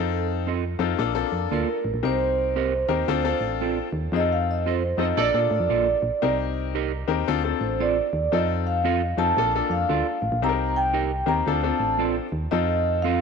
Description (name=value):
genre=soul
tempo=114 BPM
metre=4/4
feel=swing 62% on 8ths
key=F mixolydian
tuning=A4 = 441 Hz
part: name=vibraphone with soft mallets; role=melody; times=0.0-13.2 s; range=A4 to Bb5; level=-25 LUFS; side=right 3 dB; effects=none
part: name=clear upright piano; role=accompaniment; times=0.0-13.0 s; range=Bb3 to Bb4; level=-27 LUFS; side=left 14 dB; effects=none
part: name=solid FM bass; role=bass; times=0.0-13.2 s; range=A1 to Bb2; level=-27 LUFS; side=right 1 dB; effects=none
part: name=mellow electric guitar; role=stabs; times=0.5-13.2 s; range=Bb3 to Eb5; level=-30 LUFS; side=right 14 dB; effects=spring reverb
part: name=warm horn section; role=second line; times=5.0-5.4 s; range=Bb3 to Eb5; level=-29 LUFS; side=right 14 dB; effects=none
room=light reverb, small room reverb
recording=1960s-style stereo with parts hard left and right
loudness=-21 LUFS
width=side -5 dB against mid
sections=0.0-13.2 A section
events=vibraphone solo 0.0-13.2; band accent 4.1-6.2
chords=0.0 F7; 1.0 Bbmaj7; 2.0 Cm7; 3.1 Dm7; 4.1 F7; 5.2 Bbmaj7; 6.2 Cm7; 7.3 Dm7; 8.3 F7; 9.4 Bbmaj7; 10.4 Cm7; 11.5 Dm7; 12.5 F7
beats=0.47 0.99 1.52 | 2.04 2.56 3.09 3.61 | 4.14 4.66 5.18 5.71 | 6.23 6.75 7.28 7.80 | 8.33 8.85 9.37 9.90 | 10.42 10.95 11.47 11.99 | 12.52 13.04